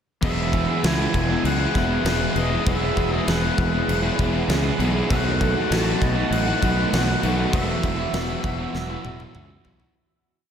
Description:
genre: rock, shoegaze and dream pop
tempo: 99 BPM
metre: 4/4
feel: straight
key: E major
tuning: A4 = 442 Hz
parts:
  - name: fingerpicked twelve-string acoustic guitar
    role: arpeggios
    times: 0.2-10.0 s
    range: F#3 to A4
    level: -31 LUFS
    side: right 1 dB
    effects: none
  - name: overdriven electric guitar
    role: riff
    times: 0.2-9.9 s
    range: E2 to F#4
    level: -28 LUFS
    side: left 6 dB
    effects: analog chorus
  - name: overdriven semi-hollow guitar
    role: riff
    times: 0.2-9.9 s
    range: E2 to G#4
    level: -26 LUFS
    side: right 6 dB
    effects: reverse reverb
  - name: fuzz fingered electric bass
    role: bass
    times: 0.2-9.9 s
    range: E1 to C#2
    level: -25 LUFS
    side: equal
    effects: overdrive
  - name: huge arena drum kit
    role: drums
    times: 0.2-9.9 s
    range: crash cymbal, kick drum, snare drum, toms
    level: -26 LUFS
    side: left 1 dB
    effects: none
  - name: octave-fuzz lead guitar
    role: melody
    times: 0.3-9.6 s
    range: D#5 to A5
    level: -29 LUFS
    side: left 2 dB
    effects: distortion, diffuse ambient delay
room: wet lush hall reverb, RT60 2.3 s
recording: dreamy mix soaked in reverb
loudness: -19 LUFS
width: side -8 dB against mid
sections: 0.2-9.9 chorus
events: fade-out 7.5-9.9; drum fill 8.7-9.9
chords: 0.2 Eadd9; 5.1 B7; 7.5 Esus2

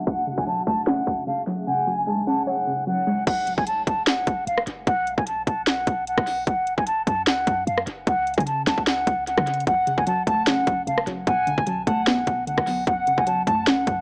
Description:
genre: hip hop, trap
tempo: 150 BPM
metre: 4/4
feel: half-time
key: F# minor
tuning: A4 = 440 Hz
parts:
  - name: mellow hollow silver concert flute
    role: melody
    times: 0.0-14.0 s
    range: E#5 to A5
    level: -26 LUFS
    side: equal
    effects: low-pass filter, analog delay
  - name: warbly dusty pluck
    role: accompaniment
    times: 0.0-3.3, 9.7-14.0 s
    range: F#2 to C#5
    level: -30 LUFS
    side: equal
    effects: chorus, low-pass filter, analog delay
  - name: granular cloud pad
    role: sustained chords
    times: 0.0-3.3 s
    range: C#2 to A3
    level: -40 LUFS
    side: equal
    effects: built-in reverb
  - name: hollow clarinet-like synth lead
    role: second line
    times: 0.1-2.5, 9.7-13.7 s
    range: F#5 to A5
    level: -31 LUFS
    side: equal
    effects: chorus, phaser, analog delay
  - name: trap drum kit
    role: drums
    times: 0.1-14.0 s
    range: crash cymbal, hi-hat, kick drum, rim click, snare drum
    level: -26 LUFS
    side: equal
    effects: analog delay
  - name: clean 808-style bass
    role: bass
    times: 3.3-14.0 s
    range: F#1 to C#3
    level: -35 LUFS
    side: equal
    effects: none
room: digital ambience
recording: echo-heavy mix, low-pass filter, small speaker sound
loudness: -23 LUFS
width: mono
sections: 0.0-3.3 A section; 3.3-14.0 B section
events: filter sweep 0.0-3.3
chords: 0.1 F#m; 1.7 C#sus4; 3.3 N.C.; 4.9 B5; 6.5 F#5; 8.1 C#sus4; 9.7 F#m; 11.3 Bm7; 12.9 F#m

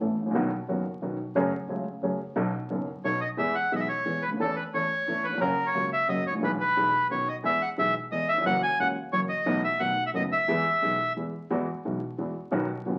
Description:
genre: tango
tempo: 177 BPM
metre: 3/4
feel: rubato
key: E major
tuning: A4 = 440 Hz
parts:
  - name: dark grand piano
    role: accompaniment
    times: 0.0-13.0 s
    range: F#1 to A4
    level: -32 LUFS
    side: equal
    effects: none
  - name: rich double bass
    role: bass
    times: 0.0-13.0 s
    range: F#1 to E2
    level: -42 LUFS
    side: equal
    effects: none
  - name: bandoneon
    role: melody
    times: 3.0-11.1 s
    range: A4 to G#5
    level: -28 LUFS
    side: equal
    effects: none
room: wet club reverb, RT60 0.8 s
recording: very old 78 rpm record, vinyl crackle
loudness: -27 LUFS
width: mono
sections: 0.0-3.4 A section; 3.4-11.5 B section; 11.5-13.0 A section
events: none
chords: 0.3 B; 1.4 F#madd9; 2.4 B7; 3.4 E; 4.4 A/E; 5.4 F#; 6.4 E/B; 7.1 Badd9; 7.4 E; 8.5 F#7; 9.5 B7sus4; 9.8 B7; 10.5 E; 11.5 Eadd9

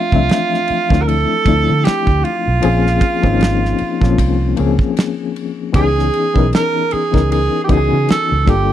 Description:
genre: R&B, neo-soul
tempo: 77 BPM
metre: 4/4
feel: swing 56% on 16ths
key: unclear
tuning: A4 = 440 Hz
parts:
  - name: warm tenor saxophone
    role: melody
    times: 0.0-8.7 s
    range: F4 to Bb4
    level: -18 LUFS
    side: right 4 dB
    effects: slapback echo
  - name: reed electric piano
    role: accompaniment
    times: 0.0-8.7 s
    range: E3 to G#5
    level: -18 LUFS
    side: left 8 dB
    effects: fast tremolo
  - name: vintage muted fingered electric bass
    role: bass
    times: 0.1-8.7 s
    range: G1 to D3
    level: -17 LUFS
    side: right 1 dB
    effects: none
  - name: damped 70s drum kit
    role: drums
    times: 0.1-8.7 s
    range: kick drum, ride cymbal, snare drum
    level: -16 LUFS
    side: right 1 dB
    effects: none
room: little or no reverb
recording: dry, close 1970s-style studio recording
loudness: -13 LUFS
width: side -11 dB against mid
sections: 0.0-8.7 A section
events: none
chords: 0.0 Dm9; 2.6 Bbm9; 5.7 C#m9

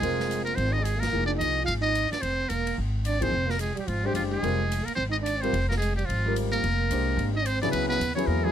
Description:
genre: modal jazz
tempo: 218 BPM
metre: 4/4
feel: swing 62% on 8ths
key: F dorian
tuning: A4 = 440 Hz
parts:
  - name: trumpet with metal mute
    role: melody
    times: 0.0-8.5 s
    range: F4 to F5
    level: -29 LUFS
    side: left 1 dB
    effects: none
  - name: trombone with bucket mute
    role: second line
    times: 0.0-8.5 s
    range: F3 to F4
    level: -32 LUFS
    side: right 7 dB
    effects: none
  - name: warm grand piano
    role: accompaniment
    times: 0.0-8.5 s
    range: Db3 to C5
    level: -30 LUFS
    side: left 2 dB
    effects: none
  - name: upright bass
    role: bass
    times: 0.0-8.5 s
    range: E1 to E2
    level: -28 LUFS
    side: equal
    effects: none
  - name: swinging big-band drum kit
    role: drums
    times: 0.0-8.2 s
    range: hi-hat, kick drum, ride cymbal, snare drum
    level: -39 LUFS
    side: left 1 dB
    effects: none
room: little or no reverb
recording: close, detailed microphones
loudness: -24 LUFS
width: side -10 dB against mid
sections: 0.0-7.7 A section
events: band accent 1.0, 3.2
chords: 0.0 Fm7; 3.3 Fmadd9; 5.5 Absus2/F; 7.7 C#m9

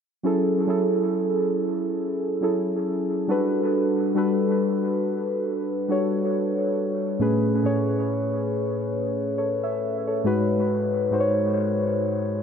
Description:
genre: R&B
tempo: 69 BPM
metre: 4/4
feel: swing 58% on 16ths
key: unclear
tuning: A4 = 442 Hz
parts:
  - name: muted felt-like synth keys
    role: accompaniment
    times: 0.2-12.4 s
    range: G#2 to E5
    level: -22 LUFS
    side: equal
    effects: chorus, dub echo
room: moderate echo chamber reverb, RT60 1.9 s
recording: echo-heavy mix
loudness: -22 LUFS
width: side -7 dB against mid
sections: 0.2-12.4 A section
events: none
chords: 0.2 F#m7; 3.3 Gmaj7; 7.2 Amaj7; 10.2 G#m7

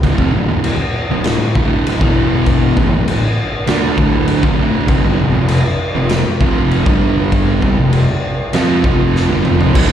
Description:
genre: stoner and doom metal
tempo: 99 BPM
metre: 4/4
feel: straight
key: unclear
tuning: A4 = 441 Hz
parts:
  - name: thick fuzz guitar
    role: riff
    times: 0.0-9.9 s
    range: D2 to F4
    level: -19 LUFS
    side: left 7 dB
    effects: distortion, slapback echo
  - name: thick fuzz guitar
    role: riff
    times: 0.0-9.9 s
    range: D2 to F4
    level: -17 LUFS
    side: right 7 dB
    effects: distortion, slapback echo
  - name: fuzz picked electric bass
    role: bass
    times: 0.0-9.9 s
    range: D1 to F2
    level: -19 LUFS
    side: left 1 dB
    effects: overdrive
  - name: raw garage drum kit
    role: drums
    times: 0.0-9.9 s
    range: crash cymbal, kick drum, snare drum, toms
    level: -16 LUFS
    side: left 1 dB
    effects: none
room: light reverb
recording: live gig heard through the venue's PA, recital hall reverb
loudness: -12 LUFS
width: side -10 dB against mid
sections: 0.0-9.7 A section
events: drum fill 9.1-9.7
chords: 0.0 Dm; 2.0 E5; 2.8 Dm; 4.9 F5; 6.9 G5; 7.6 F5

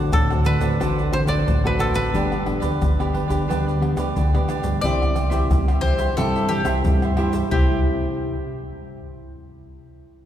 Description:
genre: samba and choro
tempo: 89 BPM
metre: 4/4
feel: straight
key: C major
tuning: A4 = 443 Hz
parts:
  - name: koto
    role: melody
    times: 0.0-4.1 s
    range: A4 to D5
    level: -26 LUFS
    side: equal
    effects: none
  - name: cavaquinho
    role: accompaniment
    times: 0.0-7.8 s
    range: D4 to F#5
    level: -29 LUFS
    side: right 4 dB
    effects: none
  - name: nylon-string guitar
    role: accompaniment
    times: 0.0-8.4 s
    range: G2 to A4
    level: -25 LUFS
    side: left 1 dB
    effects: none
  - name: deep dub fingered electric bass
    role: bass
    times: 0.0-7.8 s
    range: G1 to G2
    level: -25 LUFS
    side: equal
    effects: none
  - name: egg shaker, surdo, pandeiro and tamborim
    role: percussion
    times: 0.1-7.7 s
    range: none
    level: -23 LUFS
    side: equal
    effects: none
  - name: bowl-back mandolin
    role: second line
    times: 4.8-7.8 s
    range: G4 to D5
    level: -27 LUFS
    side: left 1 dB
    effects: none
room: wet church reverb, RT60 3.7 s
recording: recorded in a church or concert hall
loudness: -18 LUFS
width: side -10 dB against mid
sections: 0.0-4.8 A section; 4.8-7.5 B section; 7.5-10.2 C section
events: none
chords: 0.0 D7; 2.1 G; 4.8 C

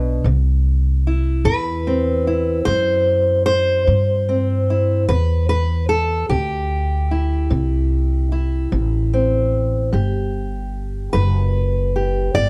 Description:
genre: acoustic country blues, solo or duo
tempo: 50 BPM (dotted quarters)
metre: 12/8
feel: straight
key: unclear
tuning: A4 = 441 Hz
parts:
  - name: fingerpicked steel-string acoustic guitar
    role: melody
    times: 0.0-12.5 s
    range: G2 to D5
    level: -22 LUFS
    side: equal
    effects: none
  - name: upright bass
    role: bass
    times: 0.0-12.5 s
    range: F#1 to G2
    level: -21 LUFS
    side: equal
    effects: none
room: light reverb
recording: dark, warm production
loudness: -19 LUFS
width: mono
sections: 0.0-12.5 A section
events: none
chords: 0.2 C; 9.9 G

